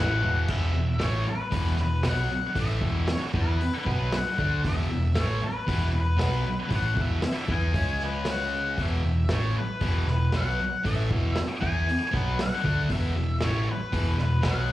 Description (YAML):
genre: garage rock duo or trio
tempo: 116 BPM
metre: 4/4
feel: straight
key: E mixolydian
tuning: A4 = 441 Hz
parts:
  - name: octave-fuzz lead guitar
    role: melody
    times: 0.0-14.7 s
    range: B4 to G#5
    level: -31 LUFS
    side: left 3 dB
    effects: distortion, slapback echo
  - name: thick fuzz guitar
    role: riff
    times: 0.0-14.7 s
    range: E2 to E4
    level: -29 LUFS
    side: equal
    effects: distortion, slapback echo
  - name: hollow-body short-scale fingered electric bass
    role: bass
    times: 0.0-14.7 s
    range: E1 to E2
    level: -27 LUFS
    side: equal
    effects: none
  - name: vintage drum kit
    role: drums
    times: 0.5-14.6 s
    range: crash cymbal, hi-hat, kick drum, snare drum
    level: -32 LUFS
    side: equal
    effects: none
room: studio ambience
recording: live gig heard through the venue's PA, club reverb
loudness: -24 LUFS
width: side -15 dB against mid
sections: 0.5-14.7 A section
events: none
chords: 0.5 E5; 7.7 C#5; 8.8 E5